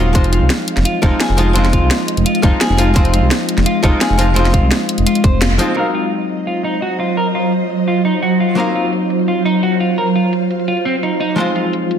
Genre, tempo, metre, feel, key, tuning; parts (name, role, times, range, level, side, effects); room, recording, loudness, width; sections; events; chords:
liquid drum and bass; 171 BPM; 4/4; straight; Eb dorian; A4 = 439 Hz
archtop guitar, miked and amplified; accompaniment; 0.0-12.0 s; F3 to F5; -20 LUFS; left 1 dB; low-pass filter, tape echo
ethereal airy pad; sustained chords; 0.0-12.0 s; Gb3 to F5; -18 LUFS; equal; ensemble chorus, built-in reverb, vintage 12-bit sampler grit, sidechain pumping
semi-hollow electric guitar; arpeggios; 0.0-11.7 s; C4 to C5; -20 LUFS; equal; low-pass filter, tape echo
smooth synth bass; bass; 0.0-5.6 s; Eb1 to C2; -15 LUFS; equal
electronic kick drum; drums; 0.1-5.3 s; -14 LUFS; equal; overdrive
drum and bass drum kit; drums; 0.2-12.0 s; hi-hat, snare drum; -20 LUFS; equal; overdrive, low-pass filter on hats, low-pass filter on snare
moderate digital room reverb, RT60 1.2 s, digital ambience; dense, heavily limited modern master; -13 LUFS; side -8 dB against mid
0.0-5.8 A section; 5.8-12.0 B section
kick drops out 5.4-5.8; band accent 5.4
0.2 Fm7; 5.8 Ebm69; 11.4 Fm7